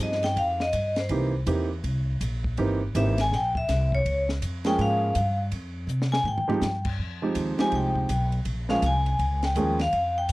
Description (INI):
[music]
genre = jazz, small-group swing and bop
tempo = 163 BPM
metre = 4/4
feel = swing 63% on 8ths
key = F minor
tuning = A4 = 440 Hz
[part]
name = vibraphone with medium hard mallets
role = melody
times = 0.0-10.3 s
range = C5 to Ab5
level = -26 LUFS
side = left 1 dB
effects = none
[part]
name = warm grand piano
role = accompaniment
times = 0.0-9.8 s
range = E3 to Ab4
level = -27 LUFS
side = right 3 dB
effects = none
[part]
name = upright bass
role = bass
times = 0.0-10.3 s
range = G1 to C3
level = -27 LUFS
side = equal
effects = none
[part]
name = compact cocktail drum kit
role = drums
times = 0.0-10.3 s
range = crash cymbal, hi-hat, kick drum, ride cymbal, snare drum, toms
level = -34 LUFS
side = equal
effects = none
[sound]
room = little or no reverb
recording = dry, close 1970s-style studio recording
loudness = -23 LUFS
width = side -19 dB against mid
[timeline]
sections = 0.0-7.0 A section; 7.0-10.3 A section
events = vibraphone solo 0.0-10.3; drum fill 5.9-6.6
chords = 0.0 Fm9; 1.1 C7#9; 4.0 Bbm7; 5.5 Fmadd9; 7.0 Fm9; 8.5 Bbm7